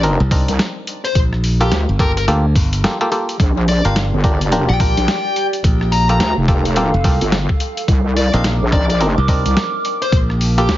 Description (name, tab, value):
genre	glitch hop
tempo	107 BPM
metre	4/4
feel	swing 61% on 16ths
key	G minor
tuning	A4 = 440 Hz
part	muted clav	stabs	0.0-10.8 s	Bb3 to Bb4	-22 LUFS	equal	vintage 12-bit sampler grit, sidechain pumping, ping-pong delay
part	wobble bass	bass	0.0-10.8 s	F1 to D2	-16 LUFS	equal	chorus, tube saturation
part	boom bap sampler-style drum kit	drums	0.0-10.8 s	hi-hat, rim click, snare drum	-23 LUFS	equal	small room ambience
part	modern bright fingered electric bass	bass	0.2-10.7 s	F1 to D2	-16 LUFS	equal	none
part	electronic kick drum	drums	0.3-10.3 s	none	-16 LUFS	equal	small room ambience
part	dark smooth lead guitar	melody	1.0-10.7 s	G4 to Bb5	-22 LUFS	left 4 dB	overdrive, ping-pong delay
part	warbly tape-like pad	sustained chords	4.0-10.8 s	G4 to D6	-24 LUFS	right 3 dB	chorus, built-in reverb, sidechain pumping
room	digital ambience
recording	heavily compressed radio sound, multiband compression, vinyl crackle, nothing above 7.5 kHz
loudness	-13 LUFS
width	side -14 dB against mid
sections	0.0-10.8 A section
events	break 2.8-3.4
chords	0.0 Cm9; 1.2 Gm9; 3.4 Bb6; 5.6 Gm9; 7.9 Cm9; 10.1 Gm9